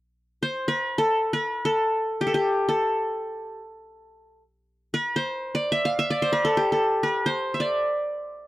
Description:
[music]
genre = arabic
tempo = free time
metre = none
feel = none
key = A maqam bayati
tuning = A4 = 443 Hz
[part]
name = qanun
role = melody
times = 0.4-8.5 s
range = G4 to F5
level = -22 LUFS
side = equal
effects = none
[sound]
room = light reverb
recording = dry, close 1970s-style studio recording, faint mains hum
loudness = -22 LUFS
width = side -16 dB against mid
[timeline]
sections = 0.0-8.5 A section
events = none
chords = none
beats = free time

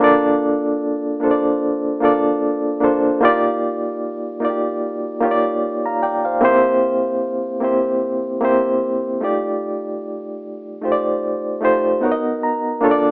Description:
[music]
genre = R&B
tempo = 75 BPM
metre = 4/4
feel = swing 56% on 16ths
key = Bb major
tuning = A4 = 440 Hz
[part]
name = reed electric piano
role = solo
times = 0.0-13.1 s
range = A3 to Bb5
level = -16 LUFS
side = equal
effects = fast tremolo
[sound]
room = moderate large studio reverb, RT60 0.9 s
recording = band playing live in one room, AM radio sound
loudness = -16 LUFS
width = side -28 dB against mid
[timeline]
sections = 0.0-13.1 A section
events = reed electric piano fill 11.6-12.8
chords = 0.0 Bbmaj9; 3.2 Ebmaj9; 6.4 C7; 9.2 F13; 12.0 Bmaj7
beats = | 0.02 0.82 1.62 2.42 | 3.22 4.02 4.82 5.62 | 6.42 7.22 8.02 8.82 | 9.62 10.42 11.22 12.02 | 12.82

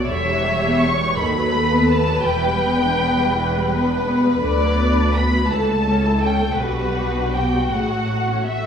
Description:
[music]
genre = classical, slow romantic movement for string orchestra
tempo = 55 BPM (dotted quarters)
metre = 6/8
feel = rubato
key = B minor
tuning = A4 = 440 Hz
[part]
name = muted studio violin section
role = second line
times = 0.0-8.7 s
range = F#4 to C#5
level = -24 LUFS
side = left 1 dB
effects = none
[part]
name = muted studio viola section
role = accompaniment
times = 0.0-8.7 s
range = C#3 to B4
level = -22 LUFS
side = equal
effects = none
[part]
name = muted studio cello section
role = bass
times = 0.0-8.7 s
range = C#2 to B2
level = -24 LUFS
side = equal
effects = none
[part]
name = muted studio double bass section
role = bass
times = 0.0-8.7 s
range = E1 to D#2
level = -24 LUFS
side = right 1 dB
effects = none
[part]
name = muted studio violin section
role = melody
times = 0.1-8.7 s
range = B4 to C#6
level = -23 LUFS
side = left 1 dB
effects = none
[sound]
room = wet stone room reverb, RT60 1.3 s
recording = heard from further back in the room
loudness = -16 LUFS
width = side -7 dB against mid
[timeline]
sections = 0.0-8.7 A section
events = none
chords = 0.1 Em7; 1.2 B7/D#; 2.3 Em7; 4.4 Bm/D; 5.5 A/C#; 6.6 G/B; 7.7 F#m/A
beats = | 0.08 1.20 | 2.28 3.36 | 4.44 5.51 | 6.60 7.70

